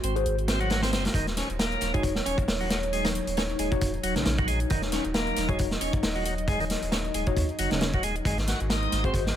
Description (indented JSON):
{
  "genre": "breakbeat, breaks",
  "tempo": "135 BPM",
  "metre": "4/4",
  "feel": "swing 56% on 16ths",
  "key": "Eb dorian",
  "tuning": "A4 = 440 Hz",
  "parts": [
    { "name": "dark analog pad", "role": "sustained chords", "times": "0.0-9.4 s", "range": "Gb3 to Eb5", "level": "-33 LUFS", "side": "equal", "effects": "chorus, phaser, sidechain pumping" },
    { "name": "bright tonewheel organ", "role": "riff", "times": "0.0-9.1 s", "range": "Db3 to Gb4", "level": "-31 LUFS", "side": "equal", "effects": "overdrive, slow rotary speaker, dub echo" },
    { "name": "saturated sub bass", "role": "bass", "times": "0.0-9.3 s", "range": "Eb1 to Eb2", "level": "-31 LUFS", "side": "equal", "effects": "none" },
    { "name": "electronic hi-hat", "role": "drums", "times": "0.0-9.3 s", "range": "none", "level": "-40 LUFS", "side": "left 2 dB", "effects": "none" },
    { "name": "mellow tine electric piano", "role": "stabs", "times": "0.2-9.2 s", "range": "Eb4 to Db5", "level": "-34 LUFS", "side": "left 3 dB", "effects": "overdrive, medium stereo tremolo, dub echo" },
    { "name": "vintage drum kit", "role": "drums", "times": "0.5-9.4 s", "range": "hi-hat, kick drum, snare drum", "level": "-28 LUFS", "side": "equal", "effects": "none" }
  ],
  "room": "light reverb, small room ambience",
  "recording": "none",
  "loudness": "-24 LUFS",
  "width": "side -10 dB against mid",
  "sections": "0.0-9.4 A section",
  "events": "none",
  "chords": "0.0 Ab7; 1.1 Ebm7; 8.3 Ab7"
}